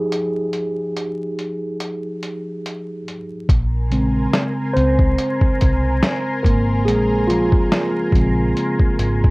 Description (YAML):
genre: lo-fi hip hop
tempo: 71 BPM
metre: 4/4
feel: swing 58% on 16ths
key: Bb minor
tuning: A4 = 440 Hz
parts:
  - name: mellow tine electric piano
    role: accompaniment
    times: 0.0-9.3 s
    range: Db3 to C5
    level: -20 LUFS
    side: equal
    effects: medium stereo tremolo, cassette tape, low-pass filter
  - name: lo-fi sampler-style drum kit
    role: drums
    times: 0.1-9.3 s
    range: hi-hat, kick drum, snare drum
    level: -18 LUFS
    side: equal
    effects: none
  - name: lush unison pad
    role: sustained chords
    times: 3.8-9.3 s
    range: Bb4 to C6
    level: -28 LUFS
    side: left 1 dB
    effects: chorus, phaser, low-pass filter
  - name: vintage muted fingered electric bass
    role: bass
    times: 3.5-9.3 s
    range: Ab1 to Db2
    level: -20 LUFS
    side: equal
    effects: none
room: moderate small room reverb, RT60 0.5 s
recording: worn, warbling old tape, cassette tape, vinyl crackle, warbly pitch drift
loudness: -16 LUFS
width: side -24 dB against mid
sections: 0.0-3.5 A section; 3.5-9.3 B section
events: filter sweep on tine electric piano 0.0-3.5; break 0.1-3.5; tine electric piano solo 3.5-9.3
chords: 0.0 Fm9; 3.5 Bbm9